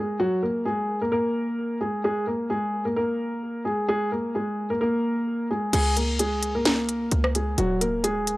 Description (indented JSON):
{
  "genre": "hip hop, trap",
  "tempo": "130 BPM",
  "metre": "4/4",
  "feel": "half-time",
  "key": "unclear",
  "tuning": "A4 = 440 Hz",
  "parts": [
    { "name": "dark concert grand piano", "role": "melody", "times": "0.0-8.4 s", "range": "Gb3 to Bb4", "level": "-24 LUFS", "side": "equal", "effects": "low-pass filter" },
    { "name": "short 808-style bass", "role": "bass", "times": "5.7-8.4 s", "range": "Eb1 to Db2", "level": "-27 LUFS", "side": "equal", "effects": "none" },
    { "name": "trap drum kit", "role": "drums", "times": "5.7-8.4 s", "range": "crash cymbal, hi-hat, rim click, snare drum", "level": "-25 LUFS", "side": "equal", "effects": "none" }
  ],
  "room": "small room ambience",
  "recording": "dry, gritty hardware recording",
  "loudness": "-23 LUFS",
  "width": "side -19 dB against mid",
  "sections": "0.0-5.7 A section; 5.7-8.4 B section",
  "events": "none",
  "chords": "0.2 Gbadd9; 2.0 Absus2; 5.7 Db5; 7.6 Ebm"
}